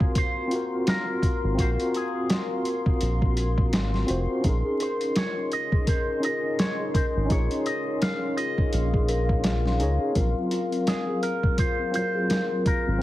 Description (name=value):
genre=trip hop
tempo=84 BPM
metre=4/4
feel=swing 58% on 16ths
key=unclear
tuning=A4 = 441 Hz
part: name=electric guitar with an envelope filter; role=melody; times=0.0-13.0 s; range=Ab4 to F5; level=-32 LUFS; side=right 1 dB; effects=phaser, tape echo
part: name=mellow tine electric piano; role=accompaniment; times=0.0-13.0 s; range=Gb3 to Db5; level=-29 LUFS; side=left 1 dB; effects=tremolo
part: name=deep dark ambient pad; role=sustained chords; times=0.0-13.0 s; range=Db4 to C6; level=-34 LUFS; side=left 2 dB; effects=chorus, built-in reverb
part: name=trip hop sampler-style drum kit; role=drums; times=0.0-12.9 s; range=hi-hat, kick drum, snare drum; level=-25 LUFS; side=equal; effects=none
part: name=round analog bass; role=bass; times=1.4-13.0 s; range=F1 to Db2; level=-25 LUFS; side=equal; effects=none
part: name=celesta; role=arpeggios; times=4.7-13.0 s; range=C4 to Bb4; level=-30 LUFS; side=left 2 dB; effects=digital delay
room=light reverb, digital ambience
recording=heavily compressed radio sound, multiband compression, vinyl crackle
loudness=-22 LUFS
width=side -15 dB against mid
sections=0.0-13.0 A section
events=none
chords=0.0 Ab13 (rootless); 4.4 Bbm11; 10.2 Ab13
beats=0.16 0.87 | 1.58 2.30 3.01 3.73 | 4.44 5.16 5.87 6.58 | 7.30 8.01 8.73 9.44 | 10.16 10.87 11.58 12.30 | 13.01